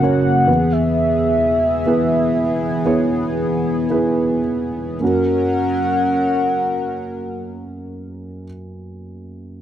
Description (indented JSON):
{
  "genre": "pop ballad",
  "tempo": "52-68 BPM",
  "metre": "4/4",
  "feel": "straight",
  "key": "unclear",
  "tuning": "A4 = 438 Hz",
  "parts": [
    { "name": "warm velvety synth lead", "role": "melody", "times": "0.0-8.5 s", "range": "E5 to F#5", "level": "-20 LUFS", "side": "left 1 dB", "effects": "chorus, slapback echo" },
    { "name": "dark baby grand piano", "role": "accompaniment", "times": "0.0-9.6 s", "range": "F#1 to C#5", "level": "-20 LUFS", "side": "right 2 dB", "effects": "none" },
    { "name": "chorused pulse-width pad", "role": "sustained chords", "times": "0.0-8.4 s", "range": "C#3 to A#4", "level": "-22 LUFS", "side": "left 2 dB", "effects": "none" }
  ],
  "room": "little or no reverb",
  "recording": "dry, close 1970s-style studio recording",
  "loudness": "-16 LUFS",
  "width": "side -10 dB against mid",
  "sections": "0.0-5.0 A section; 5.0-9.6 B section",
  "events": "slowing down 0.0-5.0",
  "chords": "0.5 E; 5.0 F#"
}